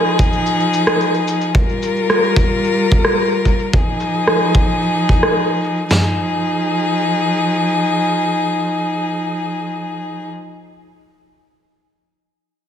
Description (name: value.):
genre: folktronica.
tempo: 110 BPM.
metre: 4/4.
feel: straight.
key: F minor.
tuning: A4 = 440 Hz.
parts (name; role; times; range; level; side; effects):
warm string quartet; sustained chords; 0.0-10.3 s; F3 to Bb4; -17 LUFS; left 1 dB; none.
electronic shaker and rim click; drums; 0.2-5.9 s; none; -18 LUFS; right 1 dB; low-pass filter on perc, low-pass filter on snare, low-pass filter on room.
vintage drum kit; drums; 0.2-6.0 s; kick drum, snare drum, splash cymbal, toms; -15 LUFS; equal; none.
room: light reverb, small room ambience.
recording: none.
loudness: -14 LUFS.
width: side -9 dB against mid.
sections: 0.0-5.9 A section; 5.9-10.3 B section.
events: filter sweep on drum 0.0-5.9.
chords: 0.0 Fm7; 1.5 Gm7; 3.7 Fm7.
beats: 0.45 1.00 | 1.54 2.09 2.63 3.18 | 3.73 4.27 4.82 5.36 | 5.91 6.45 7.00 7.54 | 8.09 8.63 9.18 9.73.